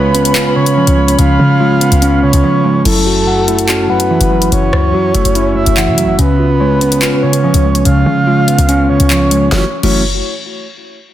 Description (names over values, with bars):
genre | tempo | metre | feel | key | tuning
hip hop, drill | 144 BPM | 4/4 | half-time | F# minor | A4 = 442 Hz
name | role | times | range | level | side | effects
breathy flute-like synth lead | second line | 0.0-10.0 s | A4 to E#5 | -17 LUFS | right 2 dB | chorus, tape echo
mellow electric guitar | accompaniment | 0.0-10.0 s | F#2 to C#4 | -14 LUFS | right 4 dB | none
clear woodwind section | sustained chords | 0.0-2.8 s | E#4 to B5 | -21 LUFS | left 3 dB | none
mellow tine electric piano | arpeggios | 0.0-10.0 s | A3 to F#5 | -16 LUFS | left 4 dB | slow stereo tremolo, tape echo
short 808-style bass | bass | 0.0-10.2 s | F#1 to C#3 | -14 LUFS | equal | none
drill drum kit | drums | 0.1-9.9 s | crash cymbal, handclaps, hi-hat, rim click, snare drum | -18 LUFS | left 2 dB | none
room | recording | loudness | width
light reverb, digital ambience | dense, heavily limited modern master | -9 LUFS | side -12 dB against mid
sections
0.0-2.9 A section; 2.9-9.5 B section; 9.5-11.1 C section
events
drums muted 2.4-2.9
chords
0.0 C#7; 2.9 F#m7; 6.2 C#7; 9.5 F#m7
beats
0.35 0.77 | 1.19 1.60 2.02 2.44 | 2.85 3.27 3.69 4.10 | 4.52 4.94 5.35 5.77 | 6.19 6.60 7.02 7.44 | 7.85 8.27 8.69 9.10 | 9.52 9.94